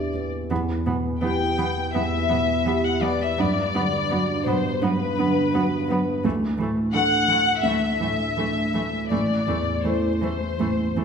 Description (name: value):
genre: neoclassical piano and strings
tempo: 83 BPM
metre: 4/4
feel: rubato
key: E minor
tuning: A4 = 440 Hz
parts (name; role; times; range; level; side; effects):
- muted chamber violin section; melody; 0.0-11.0 s; B4 to G5; -24 LUFS; left 5 dB; none
- felt-muted upright piano; accompaniment; 0.0-11.0 s; A1 to E5; -24 LUFS; right 2 dB; none
- muted cello; second line; 0.5-11.0 s; E3 to F#3; -30 LUFS; right 2 dB; none
- muted viola; accompaniment; 0.5-11.0 s; A3 to B3; -32 LUFS; right 1 dB; none
room: wet recital hall reverb, RT60 1.4 s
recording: recorded in a church or concert hall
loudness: -20 LUFS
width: side -6 dB against mid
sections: 0.5-11.0 A section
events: none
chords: 0.0 Em7; 0.5 Em; 3.4 Gmaj7; 6.2 Dsus2; 9.1 Am